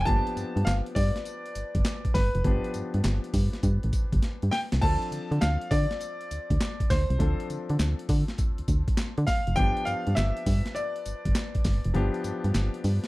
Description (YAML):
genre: R&B, new jack swing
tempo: 101 BPM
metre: 4/4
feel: swing 66% on 16ths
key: unclear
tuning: A4 = 442 Hz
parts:
  - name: clear grand piano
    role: melody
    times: 0.0-13.1 s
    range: B4 to A5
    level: -31 LUFS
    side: equal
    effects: none
  - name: clear baby grand piano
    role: accompaniment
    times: 0.0-13.1 s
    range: F3 to A4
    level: -36 LUFS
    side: left 3 dB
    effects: none
  - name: solid FM bass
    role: bass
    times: 0.0-13.0 s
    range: F1 to D3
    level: -25 LUFS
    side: equal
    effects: none
  - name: breakbeat sampler-style drum kit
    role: drums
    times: 0.1-13.1 s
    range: crash cymbal, handclaps, hi-hat, kick drum, snare drum, tambourine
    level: -28 LUFS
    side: equal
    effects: none
room: digital ambience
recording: dry, close 1970s-style studio recording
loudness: -24 LUFS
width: side -20 dB against mid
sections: 0.0-13.1 A section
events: drum fill 4.2-4.8; kick muted 11.9-13.1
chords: 0.1 G7; 4.8 Dm7; 9.6 G7